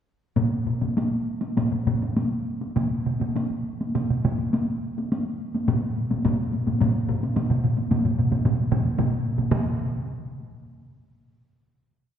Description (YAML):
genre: japanese traditional, taiko drum ensemble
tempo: 99-122 BPM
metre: 4/4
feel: straight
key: none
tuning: none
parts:
  - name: taiko ensemble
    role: percussion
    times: 0.4-9.8 s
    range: none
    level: -26 LUFS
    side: equal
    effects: none
  - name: taiko ensemble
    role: percussion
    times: 0.4-2.0, 5.7-10.0 s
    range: none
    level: -25 LUFS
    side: left 2 dB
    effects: none
  - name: solo taiko drums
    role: percussion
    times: 2.8-10.0 s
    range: none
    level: -26 LUFS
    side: right 3 dB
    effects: none
room: wet concert hall reverb, RT60 2.0 s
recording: heard from further back in the room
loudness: -22 LUFS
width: side -9 dB against mid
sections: 0.4-9.5 A section; 9.5-11.5 final hit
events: speeding up 0.4-11.5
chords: none